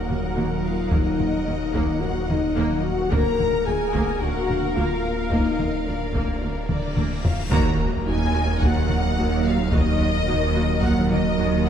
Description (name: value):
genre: cinematic, hybrid orchestral and electronic film score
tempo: 109 BPM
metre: 4/4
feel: straight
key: Eb harmonic minor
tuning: A4 = 440 Hz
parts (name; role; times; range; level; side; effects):
- clear symphonic violin section; melody; 0.0-11.7 s; D5 to Bb5; -32 LUFS; left 4 dB; none
- rich symphonic violin section; second line; 0.0-11.7 s; D5 to Bb5; -33 LUFS; left 3 dB; none
- clear symphonic viola section; accompaniment; 0.0-11.7 s; Bb3 to Bb4; -32 LUFS; right 1 dB; none
- dark French horn section; sustained chords; 0.0-11.7 s; Gb3 to Bb4; -28 LUFS; left 4 dB; none
- soft additive organ-like pad; sustained chords; 0.0-11.7 s; Gb3 to Bb4; -28 LUFS; right 1 dB; ensemble chorus, built-in reverb
- snarling distorted saw bass; bass; 0.0-11.7 s; D1 to Eb1; -30 LUFS; equal; distortion
- harp-like synth pluck; arpeggios; 0.1-11.7 s; Eb3 to Bb4; -32 LUFS; right 2 dB; chorus, phaser
- clear symphonic cello section; bass; 0.1-11.7 s; D2 to Eb2; -30 LUFS; right 2 dB; none
- clear symphonic double bass section; bass; 0.1-11.7 s; D2 to Eb2; -28 LUFS; right 3 dB; none
- taiko ensemble; drums; 0.1-11.4 s; none; -27 LUFS; equal; none
- cymbal swell and impact; sound effects; 7.0-9.7 s; none; -33 LUFS; equal; none
room: wet scoring stage reverb, RT60 1.7 s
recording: dark, warm production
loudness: -20 LUFS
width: side -8 dB against mid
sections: 0.0-7.5 A section; 7.5-11.7 B section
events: drum fill 6.7-7.5; cymbal swell 7.0-7.5; band accent 7.5-8.1; impact 7.5-9.7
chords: 0.0 Ebm; 3.1 Bb/D; 7.5 Ebm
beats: 0.37 | 0.92 1.47 2.02 2.57 | 3.12 3.67 4.22 4.77 | 5.32 5.87 6.42 6.97 | 7.52 8.07 8.62 9.17 | 9.72 10.27 10.82 11.38